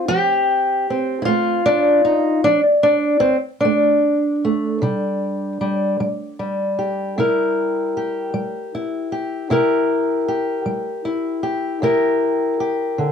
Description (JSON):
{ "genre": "acoustic country blues, solo or duo", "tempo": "51 BPM (dotted quarters)", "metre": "12/8", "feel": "straight", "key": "C mixolydian", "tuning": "A4 = 439 Hz", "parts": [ { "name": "fingerpicked old ladder-braced acoustic guitar", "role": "solo", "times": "0.0-13.1 s", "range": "C3 to Bb4", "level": "-17 LUFS", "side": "equal", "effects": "none" } ], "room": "moderate studio ambience, RT60 0.5 s", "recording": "dark, warm production", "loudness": "-17 LUFS", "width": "side -7 dB against mid", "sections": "0.0-13.1 A section", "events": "none", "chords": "0.0 F; 4.8 C7", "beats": "| 0.10 1.28 2.46 3.64 | 4.82 5.99 7.16 8.34 | 9.51 10.67 11.84 13.01" }